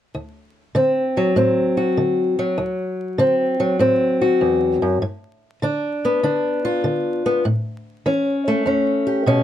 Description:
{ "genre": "acoustic country blues, solo or duo", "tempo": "99 BPM", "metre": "4/4", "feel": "swing 67% on 8ths", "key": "D mixolydian", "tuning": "A4 = 440 Hz", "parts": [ { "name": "fingerpicked old ladder-braced acoustic guitar", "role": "solo", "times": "0.1-9.4 s", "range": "D2 to G4", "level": "-17 LUFS", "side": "left 1 dB", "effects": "none" } ], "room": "light reverb", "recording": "close, detailed microphones, vinyl crackle", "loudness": "-17 LUFS", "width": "side -11 dB against mid", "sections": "0.1-9.4 A section", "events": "none", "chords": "0.1 D7; 5.0 G7; 7.5 A7", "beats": "| 0.15 0.76 1.37 1.98 | 2.59 3.20 3.81 4.41 | 5.02 5.63 6.24 6.85 | 7.45 8.06 8.67 9.27" }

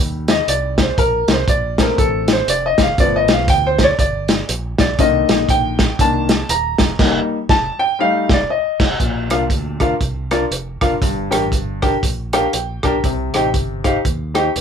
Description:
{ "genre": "uptempo gospel", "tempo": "120 BPM", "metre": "4/4", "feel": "swing 60% on 8ths", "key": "Bb major", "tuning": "A4 = 439 Hz", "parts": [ { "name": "clear concert grand piano", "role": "accompaniment", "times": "0.0-14.5 s", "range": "G2 to Bb5", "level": "-17 LUFS", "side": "left 1 dB", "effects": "none" }, { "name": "fingered electric bass", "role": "bass", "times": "0.0-14.6 s", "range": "Eb1 to Eb2", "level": "-24 LUFS", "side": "right 1 dB", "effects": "none" }, { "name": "warm soul drum kit", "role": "drums", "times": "0.3-14.6 s", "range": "crash cymbal, hi-hat, kick drum, rim click, snare drum", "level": "-17 LUFS", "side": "equal", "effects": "none" } ], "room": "moderate small room ambience, RT60 0.5 s", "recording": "band playing live in one room", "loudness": "-14 LUFS", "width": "side -7 dB against mid", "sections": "0.0-9.0 A section; 9.0-14.6 B section", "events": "grand piano solo 0.0-9.0; band accent 7.0-9.0; grand piano fill 12.0-13.0", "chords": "0.0 F7 (rootless); 1.0 Bbmaj7; 3.0 G7; 5.0 Cm7; 7.0 F7sus4; 8.0 F7; 9.0 Bb; 11.0 Gm; 13.0 Cm", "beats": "0.48 | 0.98 1.48 1.98 2.48 | 2.98 3.49 3.99 4.49 | 4.99 5.49 5.99 6.49 | 6.99 7.50 8.00 8.50 | 9.00 9.51 10.01 10.52 | 11.02 11.52 12.03 12.54 | 13.04 13.54 14.05 14.56" }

